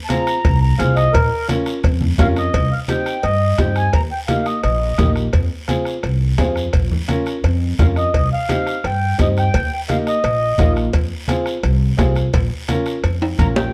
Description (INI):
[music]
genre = latin, cumbia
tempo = 171 BPM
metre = 4/4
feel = straight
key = F minor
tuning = A4 = 439 Hz
[part]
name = mellow accordion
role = melody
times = 0.1-5.1, 7.8-10.7, 13.4-13.7 s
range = Bb4 to Bb5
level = -23 LUFS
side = equal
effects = plate reverb
[part]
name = clear upright piano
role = accompaniment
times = 0.1-13.6 s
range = Bb3 to Bb4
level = -25 LUFS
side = equal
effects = none
[part]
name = bombo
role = percussion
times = 0.1-13.7 s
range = none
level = -24 LUFS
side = equal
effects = none
[part]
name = congas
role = percussion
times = 0.1-13.6 s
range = none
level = -25 LUFS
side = equal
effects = none
[part]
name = cowbell and timbales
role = percussion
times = 0.1-13.6 s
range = none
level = -28 LUFS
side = equal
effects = none
[part]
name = guiro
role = percussion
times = 0.1-13.7 s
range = none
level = -38 LUFS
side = equal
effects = none
[part]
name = upright bass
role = bass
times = 0.4-13.7 s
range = Bb1 to G2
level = -20 LUFS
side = equal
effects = none
[sound]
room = moderate studio reverb, RT60 0.8 s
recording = dark, warm production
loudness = -18 LUFS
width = mono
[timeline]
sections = 0.0-2.5 A section; 2.5-13.7 B section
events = accordion solo 0.0-2.5; drum fill 13.2-13.7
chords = 0.0 Fm; 1.1 Bbm; 2.5 Cm; 3.9 Eb; 5.3 Fm; 6.7 Bbm; 8.1 Cm; 9.5 Eb; 10.9 Fm; 12.3 Bbm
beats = 0.10 0.44 0.79 | 1.14 1.49 1.84 2.19 | 2.54 2.89 3.24 3.59 | 3.94 4.29 4.63 4.99 | 5.33 5.68 6.04 6.38 | 6.74 7.08 7.43 7.79 | 8.13 8.48 8.84 9.19 | 9.54 9.89 10.24 10.59 | 10.94 11.29 11.64 11.99 | 12.34 12.69 13.04 13.39